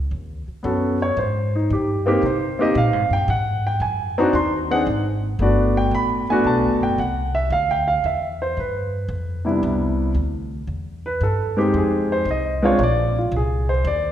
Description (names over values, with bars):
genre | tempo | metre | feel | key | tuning
jazz piano trio | 114 BPM | 4/4 | swing 69% on 8ths | G major | A4 = 440 Hz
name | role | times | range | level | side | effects
upright bass | bass | 0.0-14.1 s | F#1 to C3 | -24 LUFS | equal | none
warm grand piano | melody | 0.6-14.1 s | C3 to C6 | -20 LUFS | equal | none
room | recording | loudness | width
wet recital hall reverb, RT60 1.5 s | recorded in a church or concert hall | -18 LUFS | side -10 dB against mid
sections
0.0-9.6 A section; 9.6-14.1 B section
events
grand piano solo 9.6-14.1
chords
0.1 D#m7b5; 1.2 Abmaj9; 3.3 Ab7; 5.4 Gmaj9; 7.5 Dmadd9; 8.6 G7; 9.6 Cmaj7; 11.7 Fm7; 12.8 Bb9